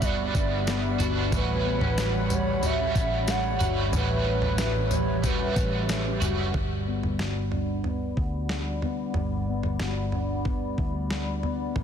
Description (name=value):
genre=dream pop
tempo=92 BPM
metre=4/4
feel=straight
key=G lydian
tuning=A4 = 440 Hz
part: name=hollow clarinet-like synth lead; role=melody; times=0.0-6.2 s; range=B4 to F#5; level=-31 LUFS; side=right 3 dB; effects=chorus, ping-pong delay
part: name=overdriven semi-hollow guitar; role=accompaniment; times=0.0-6.6 s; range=A2 to F#4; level=-31 LUFS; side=right 5 dB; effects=harmonic tremolo, ensemble chorus
part: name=hollow soft pad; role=sustained chords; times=0.0-11.8 s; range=G3 to B5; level=-34 LUFS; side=equal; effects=chorus, low-pass filter
part: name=semi-hollow electric guitar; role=arpeggios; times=0.0-11.8 s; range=A2 to F#4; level=-32 LUFS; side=left 4 dB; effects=wide subtle chorus, low-pass filter, ping-pong delay
part: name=vintage muted picked electric bass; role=bass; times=0.0-11.8 s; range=F#1 to D2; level=-30 LUFS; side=equal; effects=none
part: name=detuned 8-bit digital drum machine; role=drums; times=0.0-11.8 s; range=kick drum, snare drum, tambourine, toms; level=-30 LUFS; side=equal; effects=none
room=light reverb, digital ambience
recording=dense, heavily limited modern master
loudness=-24 LUFS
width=side -8 dB against mid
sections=0.0-6.5 A section; 6.5-11.8 B section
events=filter sweep 6.5-11.8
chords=0.0 Gmaj7; 1.3 A13; 6.5 Gmaj7